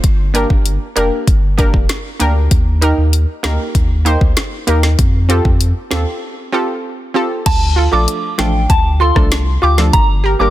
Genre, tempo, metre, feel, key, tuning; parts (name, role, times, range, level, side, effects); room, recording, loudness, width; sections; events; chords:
dancehall; 97 BPM; 4/4; straight; G minor; A4 = 440 Hz
warm sub bass; bass; 0.0-10.5 s; F1 to F2; -15 LUFS; equal
afro-pop drum kit; drums; 0.0-10.1 s; crash cymbal, hi-hat, kick drum, rim click, snare drum; -15 LUFS; equal
analog pluck; accompaniment; 0.3-10.5 s; F3 to C5; -18 LUFS; right 1 dB; chorus
soft synth bell; melody; 7.5-10.5 s; G5 to D6; -17 LUFS; equal; chorus, ping-pong delay
little or no reverb; dense, heavily limited modern master; -12 LUFS; side -14 dB against mid
0.0-7.5 A section; 7.5-10.5 B section
break 6.2-7.5
0.0 Gm; 2.5 Eb; 5.0 Fadd9; 7.5 Dm; 9.9 Gm